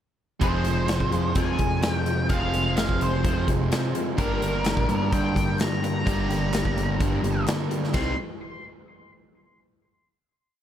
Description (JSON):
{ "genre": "classic rock", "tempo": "128 BPM", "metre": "4/4", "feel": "straight", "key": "unclear", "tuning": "A4 = 440 Hz", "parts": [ { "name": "octave-fuzz lead guitar", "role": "melody", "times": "0.4-8.2 s", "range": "Bb4 to C6", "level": "-30 LUFS", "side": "left 1 dB", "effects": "wah, distortion, analog delay" }, { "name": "picked steel-string acoustic guitar", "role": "accompaniment", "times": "0.4-8.1 s", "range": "G2 to Ab4", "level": "-34 LUFS", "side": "left 10 dB", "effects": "none" }, { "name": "crunchy overdriven guitar", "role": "riff", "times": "0.4-8.1 s", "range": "F2 to Ab4", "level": "-29 LUFS", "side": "right 8 dB", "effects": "none" }, { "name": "sludgy distorted guitar", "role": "riff", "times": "0.4-8.1 s", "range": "F2 to C4", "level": "-31 LUFS", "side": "left 6 dB", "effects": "overdrive" }, { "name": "growling picked electric bass", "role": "bass", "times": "0.4-8.2 s", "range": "F1 to G2", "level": "-28 LUFS", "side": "equal", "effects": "overdrive" }, { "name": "big rock drum kit", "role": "drums", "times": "0.4-8.1 s", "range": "hi-hat, kick drum, ride cymbal, snare drum", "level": "-28 LUFS", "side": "equal", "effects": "none" }, { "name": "group handclap", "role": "percussion", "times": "4.7-8.2 s", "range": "none", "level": "-42 LUFS", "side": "right 9 dB", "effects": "none" } ], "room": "light reverb, small room reverb", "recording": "none", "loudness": "-22 LUFS", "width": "side -10 dB against mid", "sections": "0.4-7.9 pre-chorus; 7.9-9.8 final chord", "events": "none", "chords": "0.4 Fm; 4.2 Gm; 7.9 Cm" }